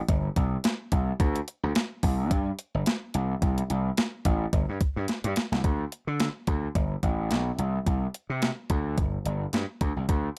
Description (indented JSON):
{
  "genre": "early-eighties boogie funk",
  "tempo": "108 BPM",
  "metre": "4/4",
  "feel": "swing 56% on 16ths",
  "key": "unclear",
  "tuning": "A4 = 438 Hz",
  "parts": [
    { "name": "gritty slap bass", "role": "bass", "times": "0.1-10.3 s", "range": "G1 to D3", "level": "-30 LUFS", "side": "equal", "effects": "overdrive" },
    { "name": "crisp 8-bit digital drum machine", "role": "drums", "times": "0.1-10.2 s", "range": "hi-hat, kick drum, snare drum", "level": "-29 LUFS", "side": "equal", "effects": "overdrive" }
  ],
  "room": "little or no reverb",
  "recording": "none",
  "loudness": "-28 LUFS",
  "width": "mono",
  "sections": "0.0-5.6 A section; 5.6-10.4 B section",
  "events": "drum fill 5.1-5.6",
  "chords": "none",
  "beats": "0.09 0.64 | 1.20 1.75 2.31 2.87 | 3.42 3.98 4.53 5.09 | 5.64 6.20 6.75 7.31 | 7.87 8.42 8.98 9.53 | 10.09"
}